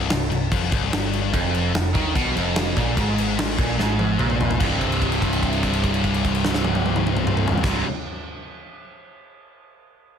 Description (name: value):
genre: hard rock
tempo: 147 BPM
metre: 4/4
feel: straight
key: unclear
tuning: A4 = 442 Hz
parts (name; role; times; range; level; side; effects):
- high-gain distorted guitar; riff; 0.0-7.8 s; C2 to Eb3; -25 LUFS; left 10 dB; distortion
- picked electric bass; bass; 0.0-7.8 s; C1 to Eb2; -26 LUFS; equal; none
- big rock drum kit; drums; 0.1-7.7 s; crash cymbal, kick drum, snare drum, toms; -24 LUFS; equal; soft clipping on snare
- cranked stack guitar; riff; 1.3-7.8 s; C2 to Eb3; -25 LUFS; right 10 dB; overdrive, phaser
room: light reverb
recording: dense, heavily limited modern master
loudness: -19 LUFS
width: side -8 dB against mid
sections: 0.0-4.6 A section; 4.6-7.9 B section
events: drum fill 3.8-4.6; held note 4.6-7.6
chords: 0.0 C5; 1.3 Fmadd11; 4.6 C5